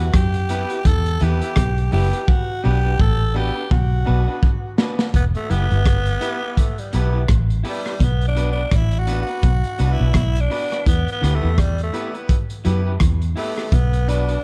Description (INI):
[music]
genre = roots reggae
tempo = 84 BPM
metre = 4/4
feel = swing 58% on 16ths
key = E minor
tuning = A4 = 437 Hz
[part]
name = growling tenor saxophone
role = melody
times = 0.0-14.4 s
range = G3 to A4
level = -28 LUFS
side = equal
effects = tape echo
[part]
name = electric guitar through a small old amp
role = accompaniment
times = 0.0-14.4 s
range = D4 to B4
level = -35 LUFS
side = equal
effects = tape echo
[part]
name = bright concert grand piano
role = stabs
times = 0.0-14.3 s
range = B3 to B4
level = -35 LUFS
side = equal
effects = none
[part]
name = vintage muted fingered electric bass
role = bass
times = 0.0-14.4 s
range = E1 to F#2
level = -21 LUFS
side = equal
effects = none
[part]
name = semi-hollow electric guitar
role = riff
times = 0.1-13.9 s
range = E2 to F#3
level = -31 LUFS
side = equal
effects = none
[part]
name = crunchy breakbeat drum kit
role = drums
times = 0.1-14.4 s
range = hi-hat, kick drum, rim click, snare drum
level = -23 LUFS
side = equal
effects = none
[sound]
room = studio ambience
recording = dark, warm production, lossy compression artefacts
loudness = -19 LUFS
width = mono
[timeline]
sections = 0.0-5.1 A section; 5.1-14.4 B section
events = drum fill 2.3-5.1; tenor saxophone solo 5.1-14.4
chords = 0.0 Em; 2.3 Bm; 5.1 Em; 8.0 Bm; 10.9 Em; 13.7 Bm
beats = 0.14 0.85 1.57 | 2.28 3.00 3.71 4.43 | 5.14 5.86 6.58 7.29 | 8.01 8.72 9.44 10.15 | 10.87 11.58 12.30 13.01 | 13.73